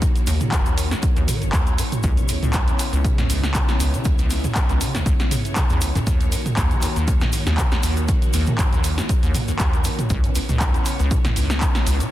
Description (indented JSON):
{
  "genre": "acid house",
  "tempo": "119 BPM",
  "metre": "4/4",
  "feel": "swing 54% on 16ths",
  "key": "Eb phrygian",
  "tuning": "A4 = 440 Hz",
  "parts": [
    { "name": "string machine, full ensemble", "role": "sustained chords", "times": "0.0-12.1 s", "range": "Db3 to Db5", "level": "-29 LUFS", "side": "equal", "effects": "ensemble chorus, sidechain pumping" },
    { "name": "acid bass, square", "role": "riff", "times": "0.0-12.1 s", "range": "Eb1 to Eb3", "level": "-23 LUFS", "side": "equal", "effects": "analog chorus" },
    { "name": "electronic kick drum", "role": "drums", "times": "0.0-11.7 s", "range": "none", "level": "-21 LUFS", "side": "equal", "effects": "none" },
    { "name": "punchy analog drum machine", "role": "drums", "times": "0.0-12.1 s", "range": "handclaps, hi-hat, snare drum, toms", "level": "-25 LUFS", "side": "right 1 dB", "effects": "none" },
    { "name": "tube shaker", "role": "percussion", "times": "0.0-12.1 s", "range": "none", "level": "-33 LUFS", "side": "left 6 dB", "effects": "none" }
  ],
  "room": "light reverb, digital ambience",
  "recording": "dense, heavily limited modern master",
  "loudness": "-18 LUFS",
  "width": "side -14 dB against mid",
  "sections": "0.0-12.1 A section",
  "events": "none",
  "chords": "0.0 Ebm7; 2.0 Dbm7; 6.1 Ebm7; 10.1 Dbm7",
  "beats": "| 0.02 0.52 1.03 1.53 | 2.04 2.54 3.04 3.55 | 4.05 4.56 5.06 5.57 | 6.07 6.57 7.08 7.58 | 8.09 8.59 9.09 9.60 | 10.10 10.61 11.11 11.62"
}